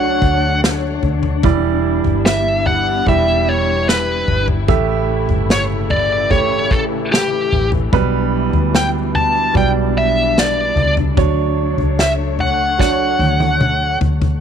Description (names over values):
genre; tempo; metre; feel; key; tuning
pop ballad; 74 BPM; 4/4; straight; D major; A4 = 441 Hz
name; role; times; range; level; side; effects
bluesy overdriven lead guitar; melody; 0.0-14.0 s; G4 to A5; -18 LUFS; left 1 dB; distortion
warm concert grand piano; accompaniment; 0.0-14.4 s; A2 to E5; -20 LUFS; right 12 dB; none
muted studio string section; sustained chords; 0.0-14.4 s; C#3 to C#5; -24 LUFS; left 16 dB; none
vintage muted fingered electric bass; bass; 0.0-14.4 s; E1 to D2; -20 LUFS; left 1 dB; none
unplugged drum kit; drums; 0.2-14.4 s; kick drum, snare drum, toms; -18 LUFS; left 1 dB; none
room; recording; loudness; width
light reverb, studio ambience; 1960s-style stereo with parts hard left and right; -13 LUFS; side -8 dB against mid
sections
0.0-14.4 A section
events
drum fill 12.8-14.4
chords
0.0 Dmaj7; 1.4 Em7; 4.7 A7; 7.9 Gmaj7/B; 11.2 Dmaj7